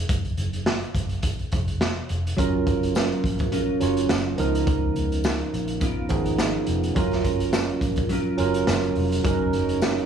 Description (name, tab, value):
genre	indie pop, bedroom pop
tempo	105 BPM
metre	4/4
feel	swing 55% on 16ths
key	F# major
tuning	A4 = 440 Hz
part	vintage muted fingered electric bass	bass	0.0-10.0 s	E#1 to C#2	-28 LUFS	equal	none
part	raw garage drum kit	drums	0.1-10.1 s	hi-hat, kick drum, snare drum	-26 LUFS	equal	none
part	barky tine electric piano	accompaniment	2.4-10.1 s	E#3 to C#5	-25 LUFS	right 8 dB	cassette tape
part	mellow electric guitar	accompaniment	2.4-10.1 s	C#3 to A#4	-28 LUFS	left 3 dB	lush chorus, vibrato effect
part	tambourine	percussion	3.0-10.0 s	none	-41 LUFS	left 14 dB	none
room	light reverb, small room ambience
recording	none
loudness	-21 LUFS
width	side -8 dB against mid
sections	0.0-10.1 A section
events	none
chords	0.1 N.C.; 2.4 F#maj7; 4.4 C#13; 7.0 F#maj7; 9.2 D#m7/F#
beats	| 0.09 0.67 1.24 1.81 | 2.38 2.96 3.53 4.10 | 4.67 5.24 5.82 6.39 | 6.96 7.53 8.10 8.68 | 9.25 9.82